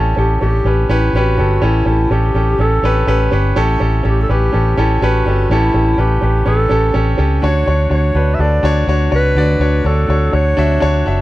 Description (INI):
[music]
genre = piano-driven pop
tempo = 124 BPM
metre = 4/4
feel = swing 56% on 16ths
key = A mixolydian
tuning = A4 = 440 Hz
[part]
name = bright grand piano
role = accompaniment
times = 0.0-11.2 s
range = A2 to E5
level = -17 LUFS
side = equal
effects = none
[part]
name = vintage muted fingered electric bass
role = bass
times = 0.0-11.2 s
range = F#1 to D2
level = -14 LUFS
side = equal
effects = none
[part]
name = mellow clarinet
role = melody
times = 0.2-11.1 s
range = E4 to E5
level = -19 LUFS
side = equal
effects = slapback echo
[sound]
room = little or no reverb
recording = dry, close 1970s-style studio recording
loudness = -12 LUFS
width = side -16 dB against mid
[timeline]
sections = 0.0-11.2 A section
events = none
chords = 0.0 A7; 7.4 Dmaj7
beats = 0.17 0.65 1.14 | 1.62 2.11 2.59 3.07 | 3.56 4.04 4.53 5.01 | 5.49 5.98 6.46 6.95 | 7.43 7.91 8.40 8.88 | 9.36 9.85 10.33 10.82